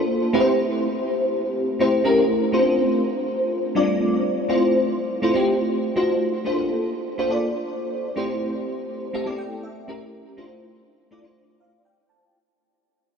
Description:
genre	pop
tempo	123 BPM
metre	4/4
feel	straight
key	F major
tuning	A4 = 439 Hz
part	bell-like FM electric piano	solo	0.0-12.4 s	G3 to A5	-20 LUFS	equal	tremolo, ensemble chorus, tape echo
room	wet huge ambient reverb, RT60 7.4 s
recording	dreamy mix soaked in reverb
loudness	-20 LUFS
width	side -6 dB against mid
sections	0.0-4.5 A section; 4.5-12.3 B section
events	fade-out 4.5-12.3; FM electric piano fill 11.4-12.3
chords	0.3 Am7; 2.0 A7b9; 2.5 F6; 4.5 Fmaj7; 6.0 F7b9; 6.5 Bbmaj9; 8.2 Am7; 9.9 A7b9; 10.4 Dm9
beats	0.09 | 0.58 1.07 1.56 2.05 | 2.54 3.03 3.52 4.00 | 4.49 4.98 5.47 5.96 | 6.45 6.94 7.43 7.92 | 8.41 8.90 9.39 9.88 | 10.37 10.87 11.36 11.85

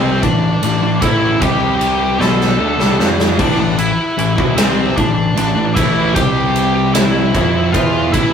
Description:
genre	quiet-loud alternative rock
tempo	51 BPM (dotted quarters)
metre	6/8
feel	straight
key	A minor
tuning	A4 = 440 Hz
part	octave-fuzz lead guitar	melody	0.0-8.3 s	C4 to A5	-18 LUFS	left 2 dB	distortion
part	sludgy distorted guitar	riff	0.0-8.3 s	A2 to F4	-20 LUFS	left 5 dB	overdrive
part	thick fuzz guitar	riff	0.0-8.3 s	A2 to F4	-20 LUFS	right 5 dB	distortion
part	thick fuzz guitar	riff	0.0-8.3 s	A2 to F4	-22 LUFS	equal	none
part	overdriven picked electric bass	bass	0.0-8.3 s	A1 to F2	-23 LUFS	equal	none
part	big rock drum kit	drums	0.2-8.3 s	crash cymbal, kick drum, ride cymbal, snare drum	-17 LUFS	equal	none
room	moderate studio reverb, RT60 0.5 s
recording	rough rehearsal-room recording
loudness	-12 LUFS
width	side -7 dB against mid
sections	0.0-8.3 A section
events	drum fill 2.2-3.4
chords	0.0 Am; 1.4 C5; 2.2 Am; 6.2 C5; 7.3 Am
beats	| 1.02 2.21 | 3.39 4.58 | 5.76 6.95 | 8.14

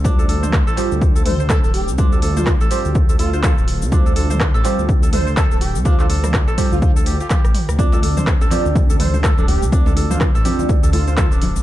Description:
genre	afro house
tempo	124 BPM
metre	4/4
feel	swing 59% on 16ths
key	D minor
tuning	A4 = 441 Hz
part	kora	arpeggios	0.0-11.6 s	D4 to C5	-26 LUFS	right 1 dB	sidechain pumping, dub echo
part	deep mellow chord stab	stabs	0.0-11.6 s	G3 to D5	-26 LUFS	right 4 dB	chorus, phaser, sidechain pumping, dub echo
part	dark detuned saw bass	bass	0.0-11.6 s	D1 to D2	-20 LUFS	equal	sidechain pumping
part	electronic kick drum	drums	0.0-11.3 s	none	-16 LUFS	equal	overdrive
part	deep house drum kit	drums	0.1-11.6 s	cabasa, handclaps, hi-hat, rim click, toms	-24 LUFS	equal	overdrive
part	expressive synth lead	melody	1.3-11.3 s	F4 to C5	-28 LUFS	equal	ensemble chorus, dub echo
part	congas	percussion	7.8-11.6 s	none	-26 LUFS	left 2 dB	none
part	djembe	percussion	7.9-11.6 s	none	-25 LUFS	right 2 dB	none
room	little or no reverb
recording	dark, warm production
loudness	-14 LUFS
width	side -14 dB against mid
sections	0.0-11.6 A section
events	drum fill 7.3-7.8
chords	0.0 Dm7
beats	| 0.05 0.53 1.01 1.50 | 1.98 2.47 2.95 3.43 | 3.92 4.40 4.88 5.37 | 5.85 6.34 6.82 7.30 | 7.79 8.27 8.76 9.24 | 9.72 10.21 10.69 11.18

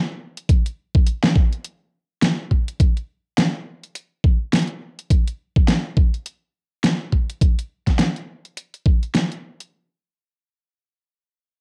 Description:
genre	glitch hop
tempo	104 BPM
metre	4/4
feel	swing 59% on 16ths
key	none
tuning	none
part	dubstep drum kit	drums	0.4-9.7 s	hi-hat, snare drum	-22 LUFS	equal	overdrive
part	electronic kick drum	drums	0.5-9.0 s	none	-18 LUFS	equal	overdrive
room	moderate studio reverb, RT60 0.6 s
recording	home recording on cassette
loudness	-21 LUFS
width	mono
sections	0.0-9.7 A section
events	none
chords	none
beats	| 0.49 1.07 1.64 2.22 | 2.80 3.37 3.95 4.53 | 5.10 5.68 6.26 6.83 | 7.41 7.99 8.57 9.14

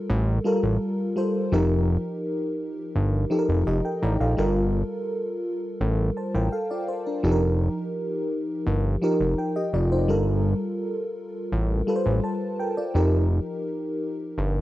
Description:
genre	contemporary R&B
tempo	84 BPM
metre	4/4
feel	straight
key	G minor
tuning	A4 = 440 Hz
part	FM electric piano with soft pad layer	accompaniment	0.0-14.6 s	F3 to Bb5	-25 LUFS	equal	chorus, tremolo, cassette tape
part	fat analog bass	bass	0.1-14.6 s	F1 to Bb1	-22 LUFS	equal	none
room	digital ambience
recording	home recording on cassette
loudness	-22 LUFS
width	side -16 dB against mid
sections	0.0-14.6 A section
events	none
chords	0.0 Gm9; 1.5 F9sus4; 4.4 Gm9; 7.2 F9sus4; 10.1 Gm9; 12.9 F9sus4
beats	0.09 0.80 | 1.52 2.23 2.95 3.66 | 4.37 5.09 5.80 6.52 | 7.23 7.95 8.66 9.37 | 10.09 10.80 11.52 12.23 | 12.95 13.66 14.37

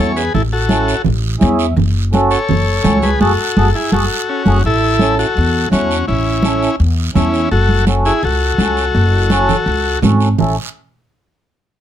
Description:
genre	latin, cumbia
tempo	167 BPM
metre	4/4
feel	straight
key	A major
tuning	A4 = 438 Hz
part	combo organ	melody	0.0-10.0 s	C#4 to C#5	-17 LUFS	left 2 dB	none
part	mellow accordion	accompaniment	0.0-10.6 s	C#4 to E5	-18 LUFS	right 2 dB	none
part	upright bass	bass	0.0-10.6 s	F#1 to E2	-16 LUFS	equal	none
part	guiro	percussion	0.2-10.5 s	none	-28 LUFS	right 6 dB	none
part	congas	percussion	0.3-10.5 s	none	-18 LUFS	right 2 dB	none
room	light reverb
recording	close, detailed microphones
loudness	-12 LUFS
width	side -10 dB against mid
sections	0.0-4.6 A section; 4.6-10.4 B section; 10.4-11.8 C section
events	accordion fill 1.2-1.8; band accent 3.2-4.6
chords	0.0 A; 1.8 F#madd9; 4.6 A; 7.5 F#m; 10.4 A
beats	| 0.33 0.69 1.05 1.41 | 1.77 2.13 2.49 2.85 | 3.21 3.57 3.92 4.28 | 4.64 5.00 5.36 5.72 | 6.08 6.44 6.80 7.16 | 7.52 7.88 8.23 8.59 | 8.95 9.31 9.67 10.03 | 10.39

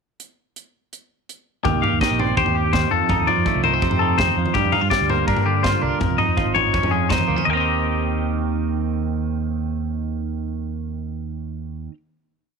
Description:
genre	math rock and midwest emo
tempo	165 BPM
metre	4/4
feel	straight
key	Eb lydian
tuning	A4 = 441 Hz
part	crisp fusion drum kit	drums	0.2-7.5 s	hi-hat, kick drum, snare drum, toms	-24 LUFS	left 2 dB	none
part	twelve-string electric guitar	accompaniment	1.6-12.0 s	Eb2 to G4	-23 LUFS	right 13 dB	vibrato effect
part	twangy electric guitar	arpeggios	1.6-11.9 s	G4 to Bb5	-21 LUFS	left 15 dB	none
part	fingered electric bass	bass	1.7-11.9 s	Ab1 to G2	-25 LUFS	left 1 dB	none
room	small room ambience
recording	1960s-style stereo with parts hard left and right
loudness	-18 LUFS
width	side -5 dB against mid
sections	0.2-1.6 pickup bar; 1.6-7.5 A section; 7.5-10.4 final chord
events	none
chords	0.2 N.C.; 1.6 Eb6; 2.9 F7; 4.5 Gm7; 6.0 Dbmaj9; 7.5 Eb6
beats	| 0.20 0.56 0.92 1.28 | 1.65 2.01 2.37 2.73 | 3.10 3.46 3.82 4.19 | 4.55 4.91 5.28 5.64 | 6.01 6.37 6.74 7.10 | 7.47 7.84 8.20 8.57 | 8.94 9.30 9.67 10.04

